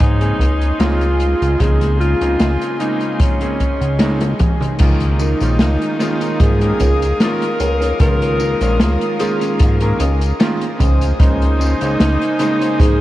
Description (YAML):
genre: vaporwave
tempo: 75 BPM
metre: 4/4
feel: swing 53% on 16ths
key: Db major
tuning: A4 = 440 Hz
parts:
  - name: mellow alto saxophone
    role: melody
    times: 0.0-13.0 s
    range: Db4 to Bb4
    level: -21 LUFS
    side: equal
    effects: tape echo
  - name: clear electric grand piano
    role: accompaniment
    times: 0.0-13.0 s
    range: Db3 to C5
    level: -22 LUFS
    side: equal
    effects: lush chorus, analog delay
  - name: warm studio string section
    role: sustained chords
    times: 0.0-13.0 s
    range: Ab4 to Eb6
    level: -27 LUFS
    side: left 2 dB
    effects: none
  - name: chorused synth bass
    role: bass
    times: 0.0-13.0 s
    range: Bb1 to Ab2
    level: -17 LUFS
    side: equal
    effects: tube saturation
  - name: kick drum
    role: drums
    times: 0.0-13.0 s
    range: none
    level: -15 LUFS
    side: equal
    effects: none
  - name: open jazz drum kit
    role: drums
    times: 0.0-13.0 s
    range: crash cymbal, hi-hat, snare drum, tambourine, toms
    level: -22 LUFS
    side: equal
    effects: none
  - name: electric guitar at the edge of break-up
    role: riff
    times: 5.2-12.8 s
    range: Db4 to Db5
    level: -28 LUFS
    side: right 1 dB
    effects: none
room: moderate huge ambient reverb, RT60 7.6 s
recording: dreamy mix soaked in reverb, cassette tape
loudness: -13 LUFS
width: side -15 dB against mid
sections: 0.0-4.8 A section; 4.8-13.0 B section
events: drum fill 4.0-4.8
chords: 0.0 Bbm11/Db; 4.8 Db69; 10.8 Bbm11/Db